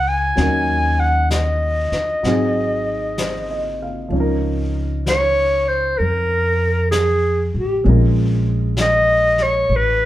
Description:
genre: jazz ballad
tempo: 64 BPM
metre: 4/4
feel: swing 66% on 8ths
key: unclear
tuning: A4 = 438 Hz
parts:
  - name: breathy clarinet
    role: melody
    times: 0.0-10.1 s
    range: G4 to G#5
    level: -18 LUFS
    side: equal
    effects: none
  - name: warm baby grand piano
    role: accompaniment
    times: 0.0-9.7 s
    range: F3 to F5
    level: -23 LUFS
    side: equal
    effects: none
  - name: upright bass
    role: bass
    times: 0.0-10.1 s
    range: Ab1 to F2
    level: -20 LUFS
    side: equal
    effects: none
  - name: vintage brush drum kit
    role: drums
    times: 0.4-10.1 s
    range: brushed snare drum, hi-hat, snare drum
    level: -28 LUFS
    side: left 2 dB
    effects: none
room: wet club reverb, RT60 0.9 s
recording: heard from further back in the room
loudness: -16 LUFS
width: side -14 dB against mid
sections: 0.0-10.1 A section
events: none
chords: 0.4 Ebm7; 2.2 Ab7; 4.1 Db69; 7.8 Bbm7

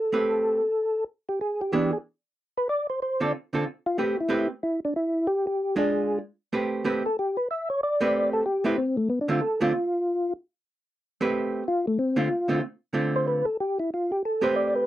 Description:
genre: jazz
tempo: 187 BPM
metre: 4/4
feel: swing 62% on 8ths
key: A minor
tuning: A4 = 440 Hz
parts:
  - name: percussive tonewheel organ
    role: melody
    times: 0.0-14.9 s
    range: A3 to E5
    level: -24 LUFS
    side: equal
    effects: slow rotary speaker, chorus vibrato
  - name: archtop guitar, miked and amplified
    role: accompaniment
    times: 0.1-14.8 s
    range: D3 to B4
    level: -25 LUFS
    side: right 2 dB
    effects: none
room: moderate booth ambience, RT60 0.2 s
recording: dry, close 1970s-style studio recording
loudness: -24 LUFS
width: side -13 dB against mid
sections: 0.0-6.5 A section; 6.5-14.9 B section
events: tonewheel organ solo 6.5-14.9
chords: 0.0 Am9; 1.4 E7; 2.7 Dm7; 4.0 Am9; 5.9 Ddim/Ab; 6.5 Am9; 9.1 Dm7; 10.4 Am9; 11.6 Dm7; 14.2 Am9

